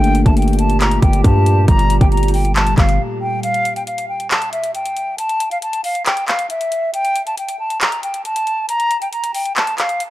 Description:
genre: hip hop, trap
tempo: 137 BPM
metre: 4/4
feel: half-time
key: unclear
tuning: A4 = 440 Hz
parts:
  - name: mellow hollow silver concert flute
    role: melody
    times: 0.0-10.0 s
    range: E5 to Bb5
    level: -19 LUFS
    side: equal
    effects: digital delay
  - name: felt-muted upright piano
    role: accompaniment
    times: 0.0-3.4 s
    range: A3 to G4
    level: -22 LUFS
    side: left 4 dB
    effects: none
  - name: dark analog pad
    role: sustained chords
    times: 0.0-3.4 s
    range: Bb2 to G4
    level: -23 LUFS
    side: right 1 dB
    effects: chorus, phaser
  - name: distorted 808-style bass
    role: bass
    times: 0.0-3.0 s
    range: G1 to G2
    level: -15 LUFS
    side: equal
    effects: distortion
  - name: trap drum kit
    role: drums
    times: 0.0-10.1 s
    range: handclaps, hi-hat, kick drum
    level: -18 LUFS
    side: equal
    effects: none
room: digital ambience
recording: dark, warm production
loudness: -14 LUFS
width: side -15 dB against mid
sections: 0.0-3.4 A section; 3.4-10.1 B section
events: break 3.0-3.4, 3.4-10.1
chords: 0.0 Gmadd9; 3.4 N.C.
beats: 0.37 0.81 1.24 | 1.68 2.12 2.56 3.00 | 3.43 3.87 4.31 4.75 | 5.18 5.62 6.06 6.50 | 6.94 7.38 7.81 8.25 | 8.69 9.13 9.56 10.00

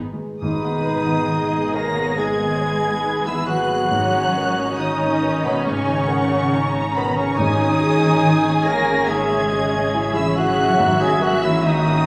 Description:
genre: cinematic, emotional film score for orchestra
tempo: 70 BPM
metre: 4/4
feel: rubato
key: G# minor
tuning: A4 = 441 Hz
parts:
  - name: warm studio violin section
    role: melody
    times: 0.0-12.1 s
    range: B5 to A#6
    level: -30 LUFS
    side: equal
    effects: none
  - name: felt-muted upright piano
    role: accompaniment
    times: 0.0-12.1 s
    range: G#2 to B4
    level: -29 LUFS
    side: equal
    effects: none
  - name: warm studio viola section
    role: accompaniment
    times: 0.0-12.1 s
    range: G#3 to G#4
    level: -29 LUFS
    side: equal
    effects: none
  - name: concert harp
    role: arpeggios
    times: 0.0-12.1 s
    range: G#2 to A#5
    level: -34 LUFS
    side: equal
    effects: none
  - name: dark studio cello section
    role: bass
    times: 0.0-12.1 s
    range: B2 to A#3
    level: -27 LUFS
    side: equal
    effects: none
  - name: warm studio double bass section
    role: bass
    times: 0.0-12.1 s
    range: G#1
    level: -33 LUFS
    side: equal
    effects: none
  - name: mellow hollow concert flute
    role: second line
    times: 0.4-12.1 s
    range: B4 to A#5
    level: -28 LUFS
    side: equal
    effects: none
  - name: warm clarinet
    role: second line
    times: 0.4-12.1 s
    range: B3 to A#4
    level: -28 LUFS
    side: equal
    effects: none
  - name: warm French horn section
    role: sustained chords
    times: 0.4-12.1 s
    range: D#3 to A#4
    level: -29 LUFS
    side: equal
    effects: none
  - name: timpani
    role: percussion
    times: 0.4-12.0 s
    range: G#2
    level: -32 LUFS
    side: equal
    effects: none
  - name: dark studio violin section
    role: second line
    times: 0.5-12.1 s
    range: B4 to A#5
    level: -29 LUFS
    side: equal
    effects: none
room: wet recital hall reverb, RT60 1.4 s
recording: studio reverb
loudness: -19 LUFS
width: mono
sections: 0.4-12.1 A section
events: none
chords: 0.4 G#madd9; 3.9 D#m7/G#; 7.4 C#madd9/G#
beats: | 0.42 1.31 2.19 3.06 | 3.93 4.79 5.66 6.53 | 7.39 8.25 9.09 9.94 | 10.80 11.65

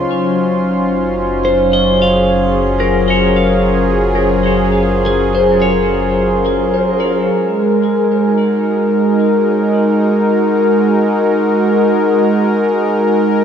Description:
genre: ambient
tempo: 67 BPM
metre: 4/4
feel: straight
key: unclear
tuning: A4 = 440 Hz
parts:
  - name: warm analog pad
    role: sustained chords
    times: 0.0-13.4 s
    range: Db3 to C6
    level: -12 LUFS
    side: equal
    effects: chorus, shimmer reverb
  - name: round analog bass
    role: bass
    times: 0.0-7.3 s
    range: Gb1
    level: -22 LUFS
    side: equal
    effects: none
  - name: analog drone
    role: drone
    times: 0.0-7.4 s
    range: none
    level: barely audible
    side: none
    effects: none
  - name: glass harmonica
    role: texture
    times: 0.0-13.4 s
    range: Ab4 to C6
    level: -24 LUFS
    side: equal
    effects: shimmer reverb
  - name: clean electric guitar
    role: arpeggios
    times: 1.4-8.0 s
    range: Ab4 to F5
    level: -18 LUFS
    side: equal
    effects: phaser, tape echo, shimmer reverb
room: wet spring reverb, RT60 2.5 s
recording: echo-heavy mix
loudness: -11 LUFS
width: side -8 dB against mid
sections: 0.0-7.3 A section; 7.3-13.4 B section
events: none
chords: 0.1 Gbmaj9; 7.3 Ab7(no3)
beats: | 0.11 1.00 1.90 2.80 | 3.69 4.59 5.50 6.42 | 7.35 8.27 9.18 10.09 | 10.98 11.88 12.78

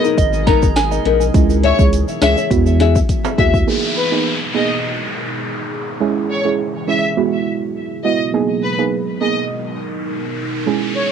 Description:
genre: dancehall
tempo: 103 BPM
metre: 4/4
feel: straight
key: G# minor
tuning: A4 = 441 Hz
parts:
  - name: soft round pluck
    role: accompaniment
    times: 0.0-11.1 s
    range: G#3 to G#4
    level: -19 LUFS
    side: right 9 dB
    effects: chorus, cassette tape
  - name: deep dark ambient pad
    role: sustained chords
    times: 0.0-11.1 s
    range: B2 to A#4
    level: -26 LUFS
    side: equal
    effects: chorus, built-in reverb, sidechain pumping, cassette tape
  - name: flamenco guitar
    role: arpeggios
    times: 0.0-3.6 s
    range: B3 to E5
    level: -19 LUFS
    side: left 13 dB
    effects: cassette tape, tape echo
  - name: tube shaker and timbales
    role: percussion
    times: 0.0-3.7 s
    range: none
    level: -30 LUFS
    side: right 13 dB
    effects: none
  - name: soft synth bell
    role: second line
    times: 0.2-1.5 s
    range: D#5 to A#5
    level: -21 LUFS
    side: right 11 dB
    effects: chorus, cassette tape, tape echo
  - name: saturated sub bass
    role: bass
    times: 0.2-3.6 s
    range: G#1 to E2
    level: -17 LUFS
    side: left 1 dB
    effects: none
  - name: afro-pop drum kit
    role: drums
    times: 0.2-3.7 s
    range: hi-hat, kick drum, rim click, snare drum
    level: -16 LUFS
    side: left 1 dB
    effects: cassette tape
  - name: rich studio violin section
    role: melody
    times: 1.6-11.1 s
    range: B4 to E5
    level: -22 LUFS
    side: left 1 dB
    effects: cassette tape, tape echo
  - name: downlifter and riser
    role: sound effects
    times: 3.7-11.1 s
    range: none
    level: -26 LUFS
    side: left 1 dB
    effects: none
room: light reverb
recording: home recording on cassette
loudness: -15 LUFS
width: side -7 dB against mid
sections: 0.0-3.7 A section; 3.7-11.1 B section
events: drum fill 3.1-3.7; riser 9.1-11.1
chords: 0.0 G#madd9; 1.3 C#m; 2.5 Eadd9; 3.7 G#madd9; 6.0 C#m; 7.2 Eadd9; 8.3 G#madd9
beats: 0.18 0.76 | 1.34 1.93 2.51 3.09 | 3.67 4.26 4.84 5.42 | 6.01 6.59 7.17 7.75 | 8.34 8.92 9.50 10.08 | 10.67

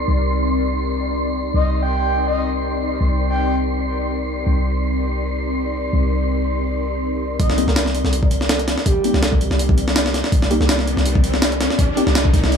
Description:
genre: drum and bass, jungle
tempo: 164 BPM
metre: 4/4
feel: swing 54% on 16ths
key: C minor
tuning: A4 = 440 Hz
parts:
  - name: ethereal airy pad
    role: sustained chords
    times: 0.0-12.6 s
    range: C4 to D5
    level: -24 LUFS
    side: left 1 dB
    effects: ensemble chorus, built-in reverb
  - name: warm 808-style bass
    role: bass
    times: 0.0-12.6 s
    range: C2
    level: -21 LUFS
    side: equal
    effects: tube saturation
  - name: wind-like tuned noise texture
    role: texture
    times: 0.0-7.4 s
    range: C6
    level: -29 LUFS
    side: right 1 dB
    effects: built-in reverb
  - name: breathy flute-like synth lead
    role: melody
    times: 1.5-3.6, 7.4-9.2 s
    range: G4 to G5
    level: -26 LUFS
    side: right 1 dB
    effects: wide subtle chorus, dub echo
  - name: jungle sampler-style drum kit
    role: drums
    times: 7.4-12.6 s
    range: hi-hat, kick drum, snare drum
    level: -17 LUFS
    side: equal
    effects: none
  - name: riser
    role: sound effects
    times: 8.6-12.6 s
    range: none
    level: -27 LUFS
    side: equal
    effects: none
  - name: deep mellow chord stab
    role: stabs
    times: 7.6-12.0 s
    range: Bb3 to G4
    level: -25 LUFS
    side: left 2 dB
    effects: chorus, dub echo
room: light reverb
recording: none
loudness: -16 LUFS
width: side -7 dB against mid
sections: 0.0-7.4 A section; 7.4-12.6 B section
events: build-up 7.4-12.6; filter sweep on synth stab 7.4-12.6; riser 8.6-12.6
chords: 0.0 Cm7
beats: | 0.08 0.45 0.81 1.18 | 1.54 1.91 2.27 2.64 | 3.01 3.37 3.74 4.10 | 4.47 4.83 5.20 5.57 | 5.93 6.30 6.66 7.03 | 7.40 7.76 8.13 8.49 | 8.86 9.22 9.59 9.96 | 10.32 10.69 11.05 11.42 | 11.79 12.15 12.52

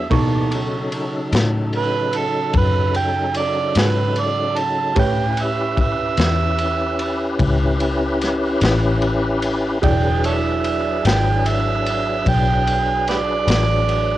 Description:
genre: slow blues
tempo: 49 BPM (dotted quarters)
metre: 12/8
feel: straight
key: unclear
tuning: A4 = 440 Hz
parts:
  - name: overdriven harmonica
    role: second line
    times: 0.0-14.2 s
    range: F#4 to A5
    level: -21 LUFS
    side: right 6 dB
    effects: cassette tape
  - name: warm upright piano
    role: accompaniment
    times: 0.0-14.2 s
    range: D#4 to C#6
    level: -27 LUFS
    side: right 6 dB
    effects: cassette tape
  - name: tonewheel organ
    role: sustained chords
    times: 0.0-14.2 s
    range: C#3 to D5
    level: -23 LUFS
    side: left 2 dB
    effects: slow rotary speaker, overdrive, chorus vibrato, cassette tape
  - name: vintage muted fingered electric bass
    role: bass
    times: 0.0-14.2 s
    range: E1 to B2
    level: -21 LUFS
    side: left 2 dB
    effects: none
  - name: crunchy breakbeat drum kit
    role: drums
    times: 0.1-14.1 s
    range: kick drum, ride cymbal, snare drum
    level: -24 LUFS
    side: left 1 dB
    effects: none
room: light reverb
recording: home recording on cassette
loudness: -16 LUFS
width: side -14 dB against mid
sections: 0.0-14.2 A section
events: harmonica solo 0.0-14.2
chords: 0.1 B9; 5.0 A9; 9.8 E9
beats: | 0.11 1.32 2.54 3.75 | 4.97 6.18 7.40 8.61 | 9.82 11.04 12.26 13.47

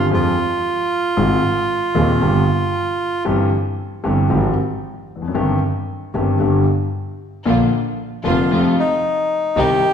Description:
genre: tango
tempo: 114 BPM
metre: 4/4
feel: rubato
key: unclear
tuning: A4 = 441 Hz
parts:
  - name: bandoneon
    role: melody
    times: 0.0-3.2, 8.3-9.9 s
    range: Eb4 to G4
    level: -19 LUFS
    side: right 1 dB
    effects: none
  - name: dark concert grand piano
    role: accompaniment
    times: 0.0-9.8 s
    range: Eb1 to Ab4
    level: -19 LUFS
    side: left 2 dB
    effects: none
  - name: clear double bass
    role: bass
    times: 0.0-9.8 s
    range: F1 to F2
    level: -22 LUFS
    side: right 1 dB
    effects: none
  - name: dark chamber string section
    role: stabs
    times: 7.5-9.8 s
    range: G3 to F4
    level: -25 LUFS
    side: right 1 dB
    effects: none
room: wet recital hall reverb, RT60 1.5 s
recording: recorded in a church or concert hall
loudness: -16 LUFS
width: side -8 dB against mid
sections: 0.0-9.9 A section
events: none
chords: 0.1 Fm; 1.2 Ab; 2.2 G; 3.3 C/G; 4.3 Fmadd9/Ab; 5.4 Cm/G; 6.4 G; 7.5 Bb; 8.5 F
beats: 0.12 0.65 | 1.17 1.70 2.22 2.75 | 3.27 3.79 4.32 4.84 | 5.36 5.89 6.41 6.94 | 7.46 7.99 8.52 9.04 | 9.57

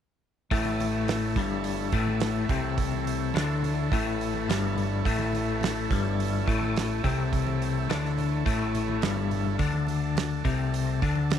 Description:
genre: psychedelic rock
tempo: 106 BPM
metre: 4/4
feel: straight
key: A mixolydian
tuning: A4 = 441 Hz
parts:
  - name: combo organ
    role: sustained chords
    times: 0.5-11.4 s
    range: E3 to C#5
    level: -34 LUFS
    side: right 14 dB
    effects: none
  - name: twelve-string electric guitar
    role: riff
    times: 0.5-11.4 s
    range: G2 to D3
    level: -27 LUFS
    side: left 5 dB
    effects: rotary speaker
  - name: growling fingered electric bass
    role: bass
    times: 0.5-11.4 s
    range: G1 to D2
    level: -33 LUFS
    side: right 2 dB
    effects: overdrive
  - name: damped 70s drum kit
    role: drums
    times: 0.5-11.4 s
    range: hi-hat, kick drum, snare drum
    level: -31 LUFS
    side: right 3 dB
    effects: none
  - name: congas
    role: percussion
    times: 0.6-11.3 s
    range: none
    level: -41 LUFS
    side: right 8 dB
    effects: none
room: small room ambience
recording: 1960s-style stereo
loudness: -25 LUFS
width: side -9 dB against mid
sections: 0.5-11.4 A section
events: drum fill 9.0-9.6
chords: 0.5 A; 9.6 D5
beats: | 0.52 1.08 1.65 2.22 | 2.78 3.35 3.92 4.49 | 5.05 5.62 6.19 6.76 | 7.33 7.89 8.46 9.03 | 9.60 10.17 10.74 11.31

